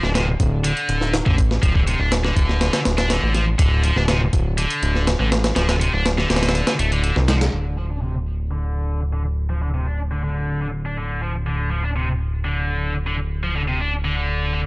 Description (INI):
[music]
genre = breakbeat, breaks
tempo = 122 BPM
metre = 4/4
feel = straight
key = D minor pentatonic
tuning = A4 = 436 Hz
[part]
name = scooped high-gain guitar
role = riff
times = 0.0-14.6 s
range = C3 to D4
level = -24 LUFS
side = equal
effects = distortion, overdrive, low-pass filter, tape echo
[part]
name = fat analog bass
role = bass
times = 0.0-14.7 s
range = D1 to C2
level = -21 LUFS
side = equal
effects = none
[part]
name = breakbeat sampler-style drum kit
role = drums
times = 0.0-7.5 s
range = hi-hat, kick drum, snare drum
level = -21 LUFS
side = equal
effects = small room ambience
[sound]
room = digital ambience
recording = dry, gritty hardware recording, nothing above 10.8 kHz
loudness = -18 LUFS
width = side -26 dB against mid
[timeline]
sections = 0.0-7.5 A section; 7.5-14.7 B section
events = filter sweep on distorted electric guitar 7.5-14.7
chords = 0.0 D5; 7.5 N.C.